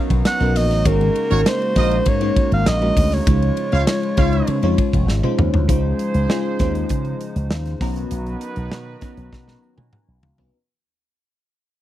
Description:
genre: polished 1980s jazz-funk pop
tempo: 99 BPM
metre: 4/4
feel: straight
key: Db major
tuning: A4 = 435 Hz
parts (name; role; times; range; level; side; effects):
- bell-like FM electric piano; accompaniment; 0.0-10.6 s; Ab3 to Bb5; -23 LUFS; left 2 dB; wide subtle chorus
- hollow soft pad; sustained chords; 0.0-10.5 s; Db3 to C5; -30 LUFS; right 1 dB; chorus
- slap bass with an envelope filter; bass; 0.1-10.5 s; F1 to Db3; -20 LUFS; equal; none
- modern studio drum kit; drums; 0.1-10.5 s; hi-hat, kick drum, ride cymbal, snare drum, toms; -21 LUFS; equal; none
- breathy alto saxophone; melody; 0.3-5.1 s; Bb4 to Gb5; -22 LUFS; right 1 dB; none
- warm horn section; second line; 1.3-10.2 s; Eb4 to F5; -28 LUFS; right 5 dB; none
room: studio reverb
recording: dry, close 1970s-style studio recording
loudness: -16 LUFS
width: side -13 dB against mid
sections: 0.0-5.7 A section; 5.7-10.5 B section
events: drum fill 5.1-5.7, 9.3-10.5; fade-out 5.7-10.5; FM electric piano fill 9.3-10.5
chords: 0.0 Cbmaj7; 0.9 Ab9sus4; 3.3 Dbmaj7; 5.7 Dbmaj9; 7.8 Cbmaj7

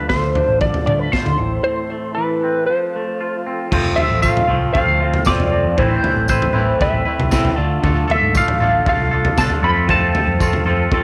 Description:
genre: psychedelic rock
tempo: 116 BPM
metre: 4/4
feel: straight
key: unclear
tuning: A4 = 440 Hz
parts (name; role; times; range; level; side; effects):
- lightly driven lead guitar; melody; 0.0-11.0 s; B4 to B5; -22 LUFS; equal; wah, tape echo
- combo organ; sustained chords; 0.0-11.0 s; E3 to A4; -34 LUFS; equal; none
- twangy electric guitar; riff; 0.0-11.0 s; A2 to B4; -23 LUFS; equal; phaser
- picked electric bass; bass; 0.1-10.9 s; F1 to D3; -23 LUFS; equal; none
- raw garage drum kit; drums; 0.1-11.0 s; crash cymbal, kick drum, snare drum, toms; -23 LUFS; equal; none
- tambourine; percussion; 4.2-10.5 s; none; -35 LUFS; equal; none
room: light reverb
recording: none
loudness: -17 LUFS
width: mono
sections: 0.0-3.7 A section; 3.7-11.0 B section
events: break 1.6-3.7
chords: 0.0 Dm; 1.4 Am; 2.7 F; 5.8 Amadd9; 7.6 Dm; 9.6 F

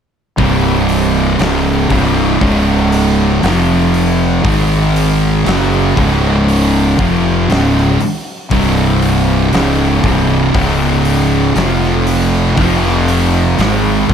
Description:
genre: stoner and doom metal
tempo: 59 BPM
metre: 4/4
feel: straight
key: C phrygian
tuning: A4 = 440 Hz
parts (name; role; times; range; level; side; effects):
- crunchy overdriven guitar; riff; 0.4-14.1 s; C2 to Ab3; -18 LUFS; right 1 dB; none
- thick fuzz guitar; riff; 0.4-14.1 s; C2 to Ab3; -16 LUFS; left 9 dB; distortion
- thick fuzz guitar; riff; 0.4-14.1 s; C2 to Ab3; -16 LUFS; right 9 dB; distortion
- fuzz fingered electric bass; bass; 0.4-14.1 s; C1 to Ab1; -16 LUFS; equal; overdrive
- big rock drum kit; drums; 0.4-14.1 s; hi-hat, kick drum, snare drum; -21 LUFS; equal; none
room: studio reverb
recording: none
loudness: -10 LUFS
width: side -8 dB against mid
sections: 0.4-14.1 A section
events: none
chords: 0.4 C5; 2.4 Db5; 3.4 F5; 4.5 Ab5; 5.5 F#5; 6.0 Db5; 7.0 C5; 10.5 Db5; 11.6 F5; 13.6 N.C.

